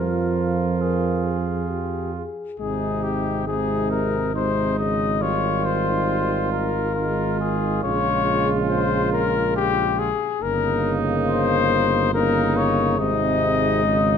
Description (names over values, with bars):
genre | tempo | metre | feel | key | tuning
classical, brass quintet | 69 BPM | 3/4 | straight | Ab major | A4 = 440 Hz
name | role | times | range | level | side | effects
warm trumpet | melody | 0.0-14.2 s | G4 to Eb5 | -24 LUFS | left 9 dB | none
clear trumpet | second line | 0.0-14.2 s | Eb4 to F4 | -28 LUFS | right 7 dB | none
mellow French horn | accompaniment | 0.0-14.2 s | G3 to Bb4 | -27 LUFS | left 4 dB | none
mellow euphonium | accompaniment | 0.0-14.2 s | C3 to F3 | -27 LUFS | right 5 dB | none
mellow bass trombone | bass | 0.0-14.2 s | G1 to F2 | -26 LUFS | right 4 dB | none
room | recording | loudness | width
moderate recital hall reverb, RT60 1.3 s | none | -19 LUFS | side -7 dB against mid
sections
0.0-2.6 A section; 2.6-14.2 B section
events
none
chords
0.0 Fm; 2.6 Ab; 5.2 Eb69/Ab; 7.0 Fm7/Ab; 7.8 Bbm7; 10.4 Eb7/G; 13.0 Ab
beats
0.82 1.71 | 2.60 3.48 4.35 | 5.22 6.09 6.96 | 7.84 8.71 9.56 | 10.43 11.28 12.14 | 13.00 13.85